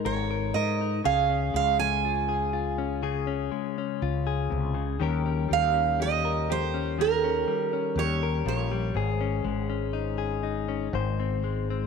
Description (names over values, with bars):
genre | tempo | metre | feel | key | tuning
acoustic folk-pop ballad | 61 BPM | 4/4 | straight | Db major | A4 = 440 Hz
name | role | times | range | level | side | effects
direct-recorded clean electric guitar | accompaniment | 0.0-11.9 s | Ab2 to C5 | -30 LUFS | left 11 dB | none
picked steel-string acoustic guitar | melody | 0.1-10.4 s | Bb4 to Ab5 | -27 LUFS | right 10 dB | none
mellow fretless electric bass | bass | 0.1-11.9 s | Ab1 to Ab2 | -30 LUFS | equal | none
room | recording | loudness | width
moderate plate reverb, RT60 2.8 s | 1960s-style stereo with parts hard left and right | -25 LUFS | side -5 dB against mid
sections
0.0-11.9 A section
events
none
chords
0.0 Absus2; 1.1 Db; 5.0 Eb7; 8.9 Absus4; 10.9 Ab